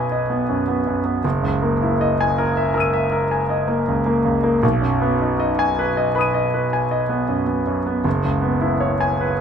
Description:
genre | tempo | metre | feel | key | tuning
classical, impressionist solo piano | 53 BPM (dotted quarters) | 9/8 | rubato | B major | A4 = 440 Hz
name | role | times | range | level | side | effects
clear concert grand piano | solo | 0.0-9.4 s | F#1 to D#7 | -17 LUFS | equal | none
room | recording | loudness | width
light reverb | close, detailed microphones | -17 LUFS | side -7 dB against mid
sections
0.0-9.4 A section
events
none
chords
0.0 B6; 1.2 F#13; 4.6 B6; 8.1 F#11

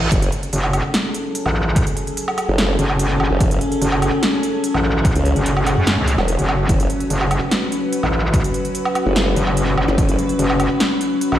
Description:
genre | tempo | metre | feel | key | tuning
heavy wobble dubstep | 146 BPM | 4/4 | half-time | F# minor | A4 = 444 Hz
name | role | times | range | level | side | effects
metallic wobble bass | bass | 0.0-11.4 s | F#1 to F#2 | -18 LUFS | equal | chorus, overdrive
reverse cymbal and zap | sound effects | 0.0-0.1, 9.9-10.0 s | none | -28 LUFS | right 1 dB | none
evolving wavetable pad | sustained chords | 0.4-11.4 s | F#3 to B4 | -22 LUFS | left 1 dB | chorus, built-in reverb, sidechain pumping
formant-sweep wobble bass | bass | 0.1-10.2 s | E1 to C#2 | -18 LUFS | equal | chorus, overdrive
big-room dance drum kit | drums | 0.1-11.4 s | hi-hat, snare drum, woodblock | -23 LUFS | right 1 dB | overdrive
electronic kick drum | drums | 0.1-10.1 s | none | -19 LUFS | equal | overdrive
room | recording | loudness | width
light reverb | played on a big sound system in a bare room, stone room reverb | -16 LUFS | side -12 dB against mid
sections
0.0-11.4 A section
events
none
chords
0.0 F#madd9

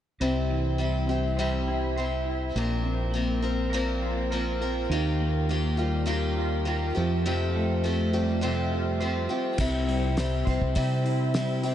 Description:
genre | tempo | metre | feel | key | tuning
folk rock and heartland rock | 102 BPM | 4/4 | straight | C mixolydian | A4 = 436 Hz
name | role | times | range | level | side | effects
picked acoustic archtop guitar | accompaniment | 0.2-11.7 s | F2 to Bb4 | -29 LUFS | left 1 dB | none
electric guitar through a small old amp | riff | 0.2-11.7 s | C3 to C5 | -31 LUFS | equal | analog chorus
fingered electric bass | bass | 0.2-11.7 s | Bb1 to C3 | -28 LUFS | equal | none
cloth-damped thuddy drum kit | drums | 9.6-11.7 s | crash cymbal, hi-hat, kick drum, snare drum | -31 LUFS | equal | none
room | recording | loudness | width
moderate huge ambient reverb, RT60 9.3 s | dreamy mix soaked in reverb, nothing above 10.5 kHz | -24 LUFS | side -10 dB against mid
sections
0.2-9.6 A section; 9.6-11.7 B section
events
none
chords
0.2 C; 2.6 Bbsus2; 4.9 Ebadd9; 7.0 Fadd9; 9.6 C

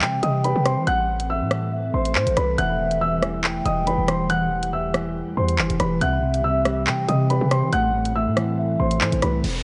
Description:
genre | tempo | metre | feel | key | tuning
hip hop, drill | 140 BPM | 4/4 | half-time | unclear | A4 = 440 Hz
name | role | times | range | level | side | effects
hollow clarinet-like synth lead | second line | 0.0-9.4 s | B4 to G5 | -30 LUFS | equal | chorus, digital delay
glassy FM pad | sustained chords | 0.0-9.4 s | E3 to A4 | -33 LUFS | equal | ensemble chorus, built-in reverb
hard-hitting 808-style bass | bass | 0.0-9.6 s | E1 to E3 | -27 LUFS | equal | none
drill drum kit | drums | 0.0-9.5 s | crash cymbal, handclaps, hi-hat, rim click | -27 LUFS | equal | none
dark baby grand piano | melody | 0.2-9.4 s | B4 to F#6 | -28 LUFS | equal | digital delay
mellow electric guitar | accompaniment | 2.6-9.4 s | E2 to G3 | -28 LUFS | equal | none
downlifter | sound effects | 9.4-9.6 s | none | -32 LUFS | equal | none
room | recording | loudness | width
light reverb, digital ambience | worn, warbling old tape, cassette tape, warbly pitch drift, nothing above 10.7 kHz | -22 LUFS | mono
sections
0.0-9.4 A section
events
break 9.4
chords
0.0 C; 0.9 Amadd9; 2.6 Em; 6.0 C; 7.7 Amadd9

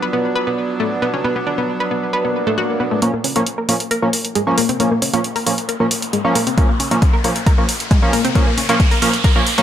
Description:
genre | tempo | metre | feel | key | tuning
driving peak-time techno | 135 BPM | 4/4 | straight | unclear | A4 = 440 Hz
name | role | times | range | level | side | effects
analog pluck | riff | 0.0-9.6 s | Ab3 to B4 | -20 LUFS | left 1 dB | chorus, sidechain pumping, dub echo
sync-sweep polysynth | stabs | 0.0-9.6 s | F3 to D4 | -20 LUFS | right 2 dB | chorus, cassette tape, sidechain pumping, digital delay
deep dark ambient pad | drone | 0.0-3.1 s | F4 | -38 LUFS | right 3 dB | none
swell and riser | sound effects | 2.3-9.6 s | none | -25 LUFS | equal | none
electronic hi-hat | drums | 3.0-9.6 s | none | -21 LUFS | right 1 dB | overdrive
electronic kick drum | drums | 6.6-9.3 s | none | -14 LUFS | equal | overdrive
room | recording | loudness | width
moderate plate reverb, RT60 1.1 s | none | -15 LUFS | side -10 dB against mid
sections
0.0-3.0 A section; 3.0-9.6 B section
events
swell 2.3-3.0; build-up 3.0-9.6; riser 3.0-9.6; filter sweep on synth arpeggio sound 3.0-9.6; filter sweep on analog polysynth 3.0-9.6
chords
0.0 Bm; 3.0 Bbm

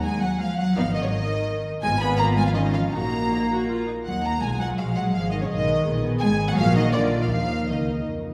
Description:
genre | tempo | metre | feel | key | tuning
quick classical-period movement for string orchestra | 166 BPM | 3/4 | straight | Eb minor | A4 = 440 Hz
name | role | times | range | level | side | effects
warm studio violin section | melody | 0.0-8.1 s | Db5 to Cb6 | -32 LUFS | equal | none
warm studio violin section | second line | 0.0-8.1 s | Db5 to Cb6 | -33 LUFS | equal | none
warm studio cello section | bass | 0.0-8.1 s | Db3 to Cb4 | -28 LUFS | equal | none
warm studio viola section | accompaniment | 0.8-8.3 s | Ab3 to Ab4 | -31 LUFS | equal | none
warm studio double bass section | bass | 0.8-8.3 s | Ab1 to F2 | -29 LUFS | equal | none
room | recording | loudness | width
wet scoring stage reverb, RT60 1.8 s | heard from further back in the room | -23 LUFS | mono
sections
0.0-8.3 A section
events
none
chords
0.0 N.C.; 0.8 Abm; 1.8 Fdim/Ab; 2.9 Ebm/Bb; 3.7 Bb5; 4.1 Ebm; 5.2 Abm; 6.2 Abm7; 6.6 Ebm/Bb; 6.9 Bb; 7.3 Eb5

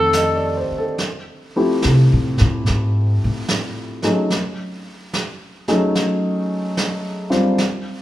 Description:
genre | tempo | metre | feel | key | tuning
jazz ballad | 73 BPM | 4/4 | swing 66% on 8ths | unclear | A4 = 440 Hz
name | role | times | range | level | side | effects
breathy tenor saxophone | melody | 0.0-0.7 s | A4 | -18 LUFS | equal | none
warm concert grand piano | accompaniment | 0.0-7.6 s | D3 to Eb5 | -20 LUFS | equal | none
upright bass | bass | 0.0-4.0 s | F2 to C3 | -17 LUFS | equal | none
vintage brush drum kit | drums | 0.1-8.0 s | brushed snare drum, hi-hat, snare drum | -26 LUFS | right 2 dB | none
room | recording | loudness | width
moderate recital hall reverb, RT60 1.7 s | recorded in a church or concert hall | -17 LUFS | side -14 dB against mid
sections
1.0-8.0 A section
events
upright bass solo 1.0-8.0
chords
0.0 F13; 1.0 Fmaj9; 4.3 F#dim7

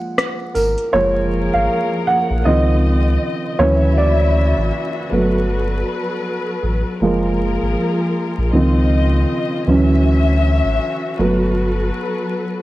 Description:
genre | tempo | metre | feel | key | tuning
lo-fi hip hop | 79 BPM | 4/4 | swing 60% on 16ths | unclear | A4 = 436 Hz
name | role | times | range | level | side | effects
dark upright piano | accompaniment | 0.0-12.6 s | C#3 to F#5 | -18 LUFS | right 2 dB | cassette tape
booming analog drum machine | drums | 0.2-0.9 s | hi-hat, rim click | -22 LUFS | left 1 dB | none
warm sub bass | bass | 0.6-11.9 s | F#1 to D2 | -17 LUFS | equal | none
tambourine | percussion | 0.6-0.8 s | none | -41 LUFS | left 4 dB | none
muted studio string section | sustained chords | 0.9-12.6 s | C#3 to E5 | -23 LUFS | left 2 dB | none
room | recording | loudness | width
light reverb, small room ambience | vinyl crackle | -15 LUFS | side -16 dB against mid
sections
0.9-12.6 A section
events
break 0.0-0.9; upright piano solo 0.9-12.6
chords
0.0 F#maj9; 2.5 C#maj9; 3.6 Dmaj9; 5.1 Gmaj9; 7.0 F#maj9; 8.5 C#maj9; 9.7 Dmaj9; 11.2 Gmaj9

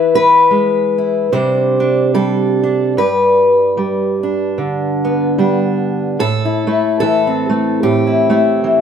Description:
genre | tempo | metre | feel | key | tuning
folk, solo fingerstyle acoustic guitar | 74 BPM | 4/4 | swing 57% on 8ths | unclear | A4 = 439 Hz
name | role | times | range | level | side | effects
fingerpicked steel-string acoustic guitar | solo | 0.0-8.8 s | G2 to C5 | -12 LUFS | equal | none
room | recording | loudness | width
moderate stone room reverb, RT60 1.1 s | band playing live in one room | -12 LUFS | side -7 dB against mid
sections
0.0-6.2 A section; 6.2-8.8 B section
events
none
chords
0.0 E; 1.3 Csus2; 3.0 G; 6.2 Am7

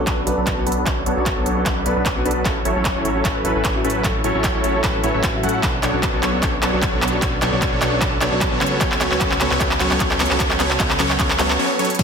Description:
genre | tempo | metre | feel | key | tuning
future bass | 151 BPM | 4/4 | swing 54% on 16ths, half-time | unclear | A4 = 440 Hz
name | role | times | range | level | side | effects
clear baby grand piano | accompaniment | 0.0-11.5 s | F#3 to B4 | -28 LUFS | left 1 dB | sidechain pumping, dub echo
supersaw chords | riff | 0.0-12.0 s | F#3 to F#5 | -20 LUFS | equal | sidechain pumping, low-pass filter, dub echo
fat analog bass | bass | 0.0-12.0 s | A1 to A2 | -26 LUFS | equal | sidechain pumping
big-room dance drum kit | drums | 0.1-12.0 s | crash cymbal, handclaps, hi-hat | -22 LUFS | equal | overdrive
electronic kick drum | drums | 0.1-12.0 s | none | -25 LUFS | equal | overdrive
swell and impact | sound effects | 11.4-12.0 s | none | -30 LUFS | left 1 dB | none
room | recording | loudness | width
moderate digital room reverb, RT60 1.1 s, digital ambience | dense, heavily limited modern master | -16 LUFS | side -6 dB against mid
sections
0.0-12.0 A section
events
build-up 0.0-12.0; drum fill 0.0-11.6, 11.8; filter sweep on supersaw synth 0.0-12.0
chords
0.0 Bm9; 2.5 F#m7/A; 5.6 Bm9; 8.6 F#madd11/C#

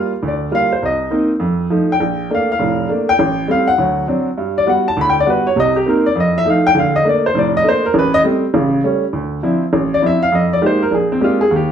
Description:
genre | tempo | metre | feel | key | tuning
jazz | 202 BPM | 4/4 | swing 62% on 8ths | unclear | A4 = 440 Hz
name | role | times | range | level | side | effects
warm upright piano | solo | 0.0-11.7 s | F1 to B5 | -13 LUFS | equal | none
room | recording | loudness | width
wet studio reverb, RT60 0.7 s | heard from further back in the room | -13 LUFS | side -8 dB against mid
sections
0.0-9.1 A section; 9.1-11.7 A section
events
upright piano solo 0.0-9.1, 9.1-11.7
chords
0.0 Gm7; 0.8 Cm7; 1.4 F7; 2.0 Bbmaj7; 3.2 Am7; 3.8 D7; 4.4 Gmaj7; 5.6 Cm7; 6.2 F7; 6.8 Bbmaj7; 7.9 Am9; 8.5 A7; 9.1 Dm9; 10.3 Fm11; 10.9 Bb13

